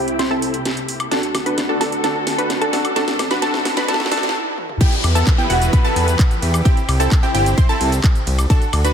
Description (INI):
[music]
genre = EDM, festival progressive house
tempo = 130 BPM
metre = 4/4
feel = straight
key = unclear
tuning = A4 = 442 Hz
[part]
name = muted studio string section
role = sustained chords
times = 0.0-8.9 s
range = C2 to B4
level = -27 LUFS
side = left 1 dB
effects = sidechain pumping, low-pass filter
[part]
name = wide unison pluck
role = arpeggios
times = 0.0-8.9 s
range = F#5 to C6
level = -24 LUFS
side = right 1 dB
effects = sidechain pumping, dub echo
[part]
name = supersaw stab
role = riff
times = 0.0-8.9 s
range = B3 to C5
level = -22 LUFS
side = equal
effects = sidechain pumping, low-pass filter, dub echo
[part]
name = riser and downlifter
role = sound effects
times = 0.6-8.5 s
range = none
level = -30 LUFS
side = right 1 dB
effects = none
[part]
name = house drum kit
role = drums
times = 0.1-8.9 s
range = cabasa, crash cymbal, handclaps, hi-hat, ride cymbal, snare drum, toms, woodblock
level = -24 LUFS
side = equal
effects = none
[part]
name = electronic kick drum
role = drums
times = 4.8-8.6 s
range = none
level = -14 LUFS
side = equal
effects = none
[part]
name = fat analog bass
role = bass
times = 5.0-8.9 s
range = E1 to E2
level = -17 LUFS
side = equal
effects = sidechain pumping
[sound]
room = moderate lush hall reverb, RT60 2.0 s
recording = dense, heavily limited modern master, high-pass filter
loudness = -15 LUFS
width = side -8 dB against mid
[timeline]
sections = 0.0-4.8 A section; 4.8-8.9 B section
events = build-up 0.0-4.8; drum fill 0.0-4.3, 4.6; filter sweep on supersaw synth 0.0-4.8; stop 4.3-4.8; drop 4.8-8.9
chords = 0.0 C; 1.1 D; 3.0 Am; 4.8 Em; 6.7 C